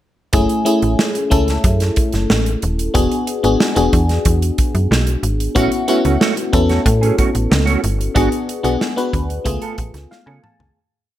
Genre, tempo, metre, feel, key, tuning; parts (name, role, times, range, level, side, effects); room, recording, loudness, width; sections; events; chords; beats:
polished 1980s jazz-funk pop; 92 BPM; 4/4; straight; F# minor; A4 = 442 Hz
FM electric piano; accompaniment; 0.3-10.8 s; A3 to A5; -18 LUFS; left 2 dB; lush chorus
slap-like FM bass; bass; 0.3-10.7 s; D#1 to C#3; -18 LUFS; equal
modern studio drum kit; drums; 0.3-10.7 s; hi-hat, kick drum, snare drum, toms; -19 LUFS; right 1 dB; gated reverb
mellow electric guitar; riff; 5.6-10.6 s; A3 to A4; -22 LUFS; right 8 dB; ensemble chorus
light reverb, small room reverb; -14 LUFS; side -13 dB against mid
0.3-10.8 verse
fade-out 8.2-10.8; FM electric piano fill 9.8-10.8; drum fill 10.1-10.8
0.3 F#m9; 2.9 E9; 5.6 A6; 8.2 G#m7b5; 9.5 C#7b13
| 0.34 0.99 1.64 2.30 | 2.95 3.60 4.25 4.90 | 5.55 6.20 6.85 7.50 | 8.15 8.80 9.45 10.10